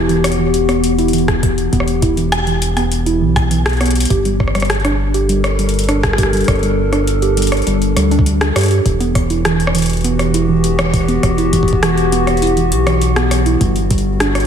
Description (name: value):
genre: IDM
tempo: 101 BPM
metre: 4/4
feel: straight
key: E minor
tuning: A4 = 440 Hz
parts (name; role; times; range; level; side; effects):
- warbly tape-like pad; sustained chords; 0.0-14.5 s; E3 to Bb4; -18 LUFS; left 1 dB; chorus, built-in reverb
- warbly dusty pluck; arpeggios; 0.0-14.3 s; E3 to G4; -19 LUFS; right 3 dB; chorus, tape echo
- round analog bass; bass; 0.0-14.5 s; E1 to G2; -18 LUFS; equal; tube saturation
- electro analog drum machine; drums; 0.1-14.5 s; hi-hat, rim click; -20 LUFS; left 1 dB; tape echo
- electronic kick drum; drums; 1.3-14.0 s; none; -18 LUFS; equal; none
room: moderate lush hall reverb, RT60 1.7 s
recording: big arena sound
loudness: -12 LUFS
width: side -8 dB against mid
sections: 0.0-14.5 A section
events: none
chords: 0.0 Em; 4.1 Gmadd9; 8.9 Em7; 13.6 G5